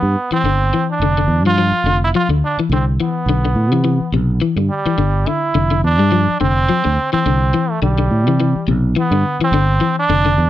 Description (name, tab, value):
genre	afrobeat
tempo	106 BPM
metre	4/4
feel	swing 55% on 16ths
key	G mixolydian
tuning	A4 = 442 Hz
part	trombone with straight mute	melody	0.0-10.5 s	G3 to F4	-18 LUFS	right 3 dB	none
part	fingered electric bass	bass	0.0-10.5 s	F1 to C3	-16 LUFS	right 1 dB	none
part	electric guitar at the edge of break-up	arpeggios	0.3-10.5 s	C3 to G3	-19 LUFS	left 6 dB	none
room	light reverb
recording	dry, close 1970s-style studio recording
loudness	-13 LUFS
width	side -13 dB against mid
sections	0.0-10.5 A section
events	none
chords	0.4 G5; 2.7 Cmaj9; 5.0 G7sus4; 7.3 Cmaj9; 9.5 G5